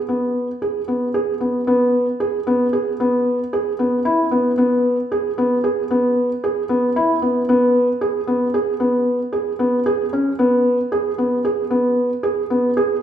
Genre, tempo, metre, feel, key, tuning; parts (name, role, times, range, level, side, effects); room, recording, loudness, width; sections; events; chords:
contemporary instrumental, contemporary; 227 BPM (eighths); 11/8; straight; E major; A4 = 439 Hz
felt-muted upright piano; solo; 0.1-13.0 s; B3 to G#4; -16 LUFS; equal
wet recital hall reverb, RT60 1.4 s; heard from further back in the room; -16 LUFS; side -10 dB against mid
0.0-1.7 A section; 1.7-13.0 B section